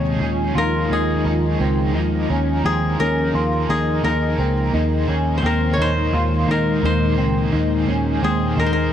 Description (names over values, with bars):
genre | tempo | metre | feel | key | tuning
dream pop | 86 BPM | 4/4 | straight | unclear | A4 = 440 Hz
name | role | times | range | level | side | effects
koto | melody | 0.0-8.9 s | Ab4 to Db5 | -24 LUFS | left 1 dB | tape echo
biting overdriven guitar | accompaniment | 0.0-8.9 s | Eb3 to C5 | -30 LUFS | right 4 dB | tremolo, lush chorus
ethereal airy pad | sustained chords | 0.0-8.9 s | Bb2 to F4 | -24 LUFS | equal | ensemble chorus, built-in reverb
electric guitar at the edge of break-up | arpeggios | 0.0-8.9 s | C3 to F4 | -25 LUFS | left 2 dB | analog chorus, tape echo
vintage muted picked electric bass | bass | 0.0-8.9 s | Db2 to Eb2 | -21 LUFS | equal | none
room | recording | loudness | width
light reverb, digital ambience | dark, warm production | -17 LUFS | side -10 dB against mid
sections
0.0-8.9 A section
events
none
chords
0.0 Dbadd9/Eb; 1.9 Ebsus2; 4.7 Abadd9